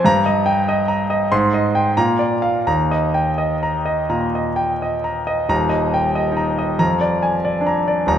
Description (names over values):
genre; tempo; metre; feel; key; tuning
classical, virtuoso piano study; 83-97 BPM; 4/4; rubato; Eb major; A4 = 441 Hz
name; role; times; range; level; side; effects
clear concert grand piano; solo; 0.0-8.2 s; Eb1 to C6; -16 LUFS; equal; none
room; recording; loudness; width
moderate concert hall reverb, RT60 2.3 s; none; -16 LUFS; side -9 dB against mid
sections
0.0-5.5 A section; 5.5-8.2 A section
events
none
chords
0.0 Eb/G; 1.3 Abmaj7; 2.0 Bb; 2.7 Eb; 6.8 Bb7/F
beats
| 0.05 0.67 1.31 1.97 | 2.67 3.38 4.11 4.82 | 5.50 6.16 6.79 7.43 | 8.07